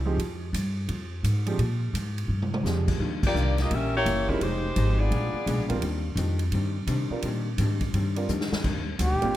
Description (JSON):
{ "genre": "jazz, big band swing", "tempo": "170 BPM", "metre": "4/4", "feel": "swing 64% on 8ths", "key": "Eb major", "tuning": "A4 = 439 Hz", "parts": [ { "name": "warm saxophone section", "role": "melody", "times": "0.0-0.1, 3.3-5.7 s", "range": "G3 to E5", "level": "-28 LUFS", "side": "left 1 dB", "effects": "none" }, { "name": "upright bass", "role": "bass", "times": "0.0-9.3 s", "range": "F1 to C3", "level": "-26 LUFS", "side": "equal", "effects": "none" }, { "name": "clear upright piano", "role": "accompaniment", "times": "0.1-9.3 s", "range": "F3 to Bb4", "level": "-32 LUFS", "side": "right 3 dB", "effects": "none" }, { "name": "swinging big-band drum kit", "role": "drums", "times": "0.2-9.4 s", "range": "crash cymbal, hi-hat, kick drum, ride cymbal, snare drum, toms", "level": "-33 LUFS", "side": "equal", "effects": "none" }, { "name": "vintage hollow-body jazz guitar", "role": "accompaniment", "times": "3.0-9.2 s", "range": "Bb2 to G4", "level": "-33 LUFS", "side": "left 4 dB", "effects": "none" }, { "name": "breathy trumpet", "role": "melody", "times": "9.0-9.4 s", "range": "G4", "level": "-26 LUFS", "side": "equal", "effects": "none" } ], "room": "light reverb", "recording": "none", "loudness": "-24 LUFS", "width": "side -14 dB against mid", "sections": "0.0-8.6 A section", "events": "drum fill 2.3-2.6, 8.3-8.6; band accent 3.2", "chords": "0.2 Fmadd9; 1.6 Bb13; 3.0 Ebmaj9; 3.7 Edim7; 4.4 Fm9; 5.1 Bb7b9; 5.8 Ebmaj13" }